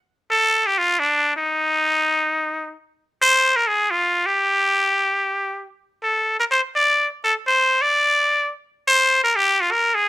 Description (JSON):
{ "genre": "jazz", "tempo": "free time", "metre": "none", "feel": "none", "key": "G minor", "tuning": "A4 = 440 Hz", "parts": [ { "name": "trumpet with straight mute", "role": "solo", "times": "0.3-10.1 s", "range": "D4 to D5", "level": "-16 LUFS", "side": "equal", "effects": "none" } ], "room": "light reverb", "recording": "close, detailed microphones", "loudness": "-17 LUFS", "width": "side -15 dB against mid", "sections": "0.1-10.1 A section", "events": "none", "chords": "none" }